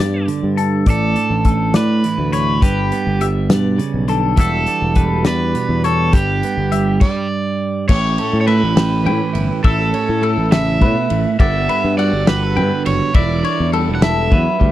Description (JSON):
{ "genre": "math rock and midwest emo", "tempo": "68 BPM (dotted quarters)", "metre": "6/8", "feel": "straight", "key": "unclear", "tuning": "A4 = 441 Hz", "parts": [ { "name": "crunchy overdriven guitar", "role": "melody", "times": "0.0-14.7 s", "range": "G4 to F#5", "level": "-21 LUFS", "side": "right 2 dB", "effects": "slapback echo" }, { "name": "twelve-string electric guitar", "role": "accompaniment", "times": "0.0-14.7 s", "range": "G2 to A4", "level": "-21 LUFS", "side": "right 6 dB", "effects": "none" }, { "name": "twangy electric guitar", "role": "arpeggios", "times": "0.0-14.7 s", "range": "A4 to G5", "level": "-24 LUFS", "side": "left 10 dB", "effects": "phaser" }, { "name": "overdriven fingered electric bass", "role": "bass", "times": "0.0-14.7 s", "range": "E1 to A2", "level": "-18 LUFS", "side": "left 1 dB", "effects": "none" }, { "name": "loose indie drum kit", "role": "drums", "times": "0.3-14.7 s", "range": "crash cymbal, hi-hat, kick drum, ride cymbal, snare drum", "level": "-17 LUFS", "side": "left 1 dB", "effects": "none" } ], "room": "little or no reverb", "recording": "dry, close 1970s-style studio recording", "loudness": "-14 LUFS", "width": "side -14 dB against mid", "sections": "0.0-7.9 A section; 7.9-14.7 B section", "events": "stop 7.0-7.9", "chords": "0.0 Gadd9; 0.9 Asus24; 2.6 Gadd9; 4.4 Em9; 6.1 G; 7.9 A7; 11.4 Gmaj9; 13.1 Em7", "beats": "0.00 | 0.88 1.76 | 2.64 3.51 | 4.39 5.27 | 6.14 7.02 | 7.90 8.77 | 9.65 10.52 | 11.40 12.27 | 13.15 14.02" }